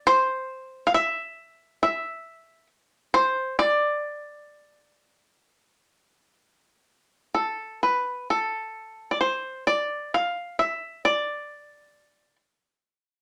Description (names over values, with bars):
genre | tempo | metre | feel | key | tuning
celtic folk | 66 BPM | 4/4 | uneven beats, rubato | D dorian | A4 = 440 Hz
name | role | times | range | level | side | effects
bluegrass banjo | solo | 0.0-12.4 s | A4 to F5 | -25 LUFS | equal | none
room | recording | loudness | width
wet studio reverb, RT60 0.5 s | none | -26 LUFS | mono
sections
0.0-7.3 A section; 7.3-13.2 B section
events
none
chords
none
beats
| 0.06 0.93 1.81 2.70 | 3.59 4.49 5.41 6.37 | 7.33 8.25 9.17 10.09 | 11.01 11.93